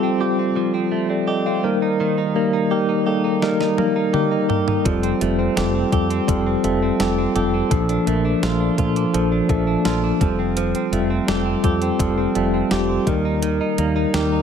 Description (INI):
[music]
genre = 1980s-style pop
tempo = 84 BPM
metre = 4/4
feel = straight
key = F mixolydian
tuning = A4 = 436 Hz
[part]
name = mellow tine electric piano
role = accompaniment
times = 0.0-14.4 s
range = F3 to F5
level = -19 LUFS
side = left 2 dB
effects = medium stereo tremolo
[part]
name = direct-recorded clean electric guitar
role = riff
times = 0.0-14.4 s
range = Eb3 to G4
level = -25 LUFS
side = right 5 dB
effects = wide subtle chorus, ping-pong delay
[part]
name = clean 12-bit digital drum machine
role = drums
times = 3.4-14.3 s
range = hi-hat, kick drum, snare drum, toms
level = -24 LUFS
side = right 1 dB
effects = none
[part]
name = woody fretless electric bass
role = bass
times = 4.9-14.4 s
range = F1 to Bb2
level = -24 LUFS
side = equal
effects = none
[sound]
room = light reverb, digital ambience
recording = none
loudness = -17 LUFS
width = side -7 dB against mid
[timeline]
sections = 0.0-14.4 A section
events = drum fill 3.4-4.9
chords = 0.0 Fadd9; 1.6 Eb; 4.9 Fadd9; 7.7 Bbmaj7; 10.2 Fadd9; 13.1 Eb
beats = 0.57 1.28 | 2.00 2.71 3.43 4.14 | 4.85 5.57 6.28 7.00 | 7.71 8.43 9.14 9.85 | 10.57 11.28 12.00 12.71 | 13.43 14.14